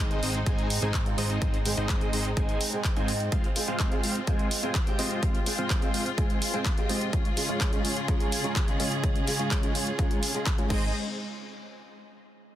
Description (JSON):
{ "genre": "EDM, festival progressive house", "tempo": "126 BPM", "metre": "4/4", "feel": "straight", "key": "Ab major", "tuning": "A4 = 439 Hz", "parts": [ { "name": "fingerpicked old ladder-braced acoustic guitar", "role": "accompaniment", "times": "0.0-10.9 s", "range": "Ab2 to Ab4", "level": "-35 LUFS", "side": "right 1 dB", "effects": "sidechain pumping, digital delay" }, { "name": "dark symphonic string section", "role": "sustained chords", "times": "0.0-10.9 s", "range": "Db3 to Eb5", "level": "-35 LUFS", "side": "equal", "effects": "sidechain pumping" }, { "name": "dense compressed supersaw", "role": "riff", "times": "0.0-10.9 s", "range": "Ab3 to Bb5", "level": "-33 LUFS", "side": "equal", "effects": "sidechain pumping, low-pass filter, digital delay" }, { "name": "fat analog bass", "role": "bass", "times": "0.0-3.3, 10.7-10.9 s", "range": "Ab1 to Ab2", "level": "-32 LUFS", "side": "equal", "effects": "sidechain pumping" }, { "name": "big-room dance drum kit", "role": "drums", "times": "0.1-10.8 s", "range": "crash cymbal, handclaps, hi-hat", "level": "-33 LUFS", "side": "equal", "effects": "overdrive" }, { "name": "electronic kick drum", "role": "drums", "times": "0.5-10.8 s", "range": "none", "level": "-27 LUFS", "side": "equal", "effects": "overdrive" } ], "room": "little or no reverb", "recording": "dense, heavily limited modern master", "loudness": "-25 LUFS", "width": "side -12 dB against mid", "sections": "0.0-10.9 A section; 10.9-12.6 B section", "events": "filter sweep on supersaw synth 0.0-10.9", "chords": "0.0 Ab; 3.3 Fm; 7.1 Db; 10.7 Ab; 10.9 N.C." }